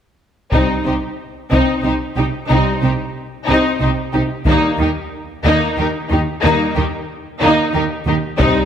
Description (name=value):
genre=cinematic, epic orchestral film score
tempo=91 BPM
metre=3/4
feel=straight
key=C minor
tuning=A4 = 440 Hz
part: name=warm symphonic violin section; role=melody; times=0.5-8.7 s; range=Eb4 to C5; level=-22 LUFS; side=left 3 dB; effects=none
part: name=warm symphonic violin section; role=second line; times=0.5-8.7 s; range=Bb3 to G4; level=-23 LUFS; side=left 3 dB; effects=none
part: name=warm symphonic viola section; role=accompaniment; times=0.5-8.7 s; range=Eb4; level=-20 LUFS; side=equal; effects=none
part: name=mellow French horn section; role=sustained chords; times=0.5-8.6 s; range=G3 to Eb4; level=-24 LUFS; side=left 2 dB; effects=none
part: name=dark symphonic double bass section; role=bass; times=0.5-8.5 s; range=C2 to Eb2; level=-22 LUFS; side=right 2 dB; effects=none
part: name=warm symphonic cello section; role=bass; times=0.5-8.5 s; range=C3 to Eb3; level=-21 LUFS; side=right 3 dB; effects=none
part: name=taiko ensemble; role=drums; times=0.5-8.7 s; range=none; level=-20 LUFS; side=equal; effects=none
room=moderate scoring stage reverb, RT60 2.0 s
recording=none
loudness=-14 LUFS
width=side -8 dB against mid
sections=0.5-8.7 A section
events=build-up 0.5-8.7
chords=0.5 Cm; 4.5 Eb5